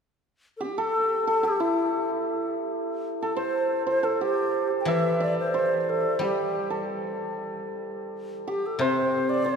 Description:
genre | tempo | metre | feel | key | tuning
chinese traditional, Chinese chamber ensemble | 92 BPM | 2/4 | rubato | C gong mode | A4 = 444 Hz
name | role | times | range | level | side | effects
bright reedy low xiao | melody | 0.6-9.6 s | C4 to G5 | -28 LUFS | left 1 dB | none
hammered dulcimer | second line | 0.6-9.6 s | E4 to E5 | -27 LUFS | right 2 dB | none
guzheng | accompaniment | 4.9-9.6 s | C3 to G3 | -29 LUFS | left 2 dB | none
room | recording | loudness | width
wet cathedral reverb, RT60 6.1 s | recorded in a church or concert hall | -24 LUFS | side -6 dB against mid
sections
0.0-9.6 A section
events
none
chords
none

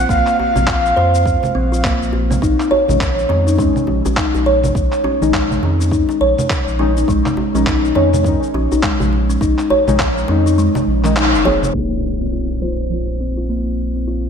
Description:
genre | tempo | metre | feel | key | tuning
organic downtempo | 103 BPM | 4/4 | swing 60% on 16ths | unclear | A4 = 440 Hz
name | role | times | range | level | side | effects
breathy flute-like synth lead | melody | 0.0-1.5 s | F5 | -18 LUFS | right 1 dB | analog chorus, analog delay
kalimba | arpeggios | 0.0-14.3 s | Ab3 to Db5 | -17 LUFS | left 1 dB | low-pass filter, analog delay
warm sub bass | bass | 0.0-14.3 s | F1 to F2 | -19 LUFS | equal | sidechain pumping
electronic kick drum | drums | 0.1-10.1 s | none | -21 LUFS | equal | none
electronic shaker, handclaps and congas | drums | 0.1-11.7 s | none | -22 LUFS | right 1 dB | none
djembe | percussion | 0.4-11.6 s | none | -26 LUFS | equal | none
deep mellow chord stab | accompaniment | 2.9-14.3 s | Eb3 to Ab4 | -22 LUFS | left 2 dB | chorus, sidechain pumping, analog delay
impact | sound effects | 11.7-14.1 s | none | -28 LUFS | equal | none
room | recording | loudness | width
moderate lush hall reverb, RT60 1.7 s | dreamy mix soaked in reverb, low-pass filter | -13 LUFS | side -7 dB against mid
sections
0.0-11.7 A section; 11.7-14.3 B section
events
kick drops out 10.6-11.7; band accent 11.2; impact 11.7-14.1; filter sweep on kalimba 11.7-14.3; filter sweep on synth stab 11.7-14.3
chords
0.0 Bbsus2; 2.4 Absus4/Bb; 11.7 Bbsus2

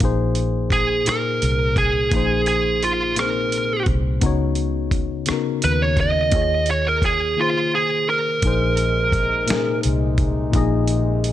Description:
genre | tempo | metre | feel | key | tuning
slow six-eight R&B | 57 BPM (dotted quarters) | 6/8 | straight | Bb minor | A4 = 437 Hz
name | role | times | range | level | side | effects
mellow tine electric piano | accompaniment | 0.0-11.3 s | Bb2 to Eb5 | -24 LUFS | left 6 dB | none
vintage muted fingered electric bass | bass | 0.0-11.3 s | Bb1 to Eb2 | -22 LUFS | equal | none
dusty soul sampler-style drum kit | drums | 0.0-11.3 s | hi-hat, kick drum, rim click, snare drum | -23 LUFS | equal | none
biting lead guitar | melody | 0.7-9.8 s | F4 to Eb5 | -20 LUFS | right 2 dB | overdrive, slapback echo
mellow French horn section | sustained chords | 8.4-11.3 s | C3 to Eb4 | -31 LUFS | left 1 dB | none
room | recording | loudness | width
light reverb | none | -17 LUFS | side -12 dB against mid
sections
0.0-11.3 A section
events
lead electric guitar solo 0.0-11.3; silent gap 7.4-8.4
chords
0.0 Bb9sus4; 4.2 Db9sus4; 6.3 Eb9sus4; 8.4 Bb9sus4

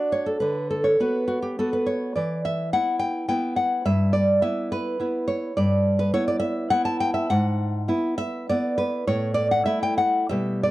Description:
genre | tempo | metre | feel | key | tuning
romantic piece for solo classical guitar | 104 BPM | 3/4 | uneven beats, rubato | unclear | A4 = 440 Hz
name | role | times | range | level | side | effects
nylon-string guitar | solo | 0.0-10.7 s | G2 to A5 | -21 LUFS | equal | none
room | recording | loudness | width
light reverb | dry, close 1970s-style studio recording | -21 LUFS | side -16 dB against mid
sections
0.0-10.7 A section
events
none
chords
0.4 Bm/D; 2.2 E5; 3.9 Em/G; 7.3 E/G#; 9.1 A5

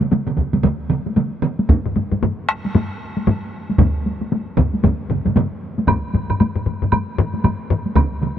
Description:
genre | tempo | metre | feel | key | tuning
japanese traditional, taiko drum ensemble | 115 BPM | 4/4 | swing 60% on 16ths | none | none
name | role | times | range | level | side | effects
taiko ensemble | percussion | 0.0-8.4 s | none | -22 LUFS | equal | none
taiko ensemble | percussion | 0.0-8.4 s | none | -23 LUFS | right 4 dB | none
taiko ensemble | percussion | 0.4-8.1 s | none | -18 LUFS | equal | none
taiko ensemble | percussion | 1.7-7.8 s | none | -21 LUFS | left 2 dB | none
woodblock | percussion | 5.9-8.1 s | none | -26 LUFS | right 4 dB | none
room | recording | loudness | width
moderate huge ambient reverb, RT60 6.3 s | none | -17 LUFS | side -10 dB against mid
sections
0.0-8.4 A section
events
none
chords
none

